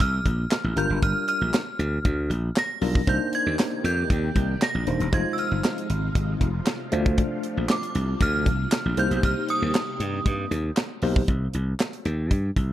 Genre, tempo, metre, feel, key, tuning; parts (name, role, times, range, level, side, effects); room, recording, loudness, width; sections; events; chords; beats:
early-eighties boogie funk; 117 BPM; 4/4; straight; C minor; A4 = 440 Hz
synth chime; melody; 0.0-10.5 s; D6 to Bb6; -28 LUFS; right 2 dB; ensemble chorus, slapback echo
slap bass; bass; 0.0-12.7 s; Eb1 to G2; -25 LUFS; equal
tight funk drum kit; drums; 0.0-12.7 s; handclaps, hi-hat, kick drum, snare drum; -24 LUFS; equal
tine electric piano; accompaniment; 0.8-11.2 s; G3 to C5; -28 LUFS; left 2 dB; overdrive, fast stereo tremolo
phased string machine; sustained chords; 3.1-11.3 s; C3 to D5; -34 LUFS; equal; ensemble chorus, phaser
light reverb, small room reverb; dark, warm production; -22 LUFS; side -13 dB against mid
0.0-11.3 A section; 11.3-12.7 B section
0.0 Dm7 (rootless); 0.8 Gm7; 3.1 Cm9; 5.1 Fm7; 6.9 Dm7; 9.0 Cm7; 11.3 Cm
0.00 0.51 | 1.03 1.54 2.05 2.56 | 3.08 3.59 4.10 4.62 | 5.13 5.64 6.15 6.67 | 7.18 7.69 8.21 8.72 | 9.23 9.74 10.26 10.77 | 11.28 11.79 12.31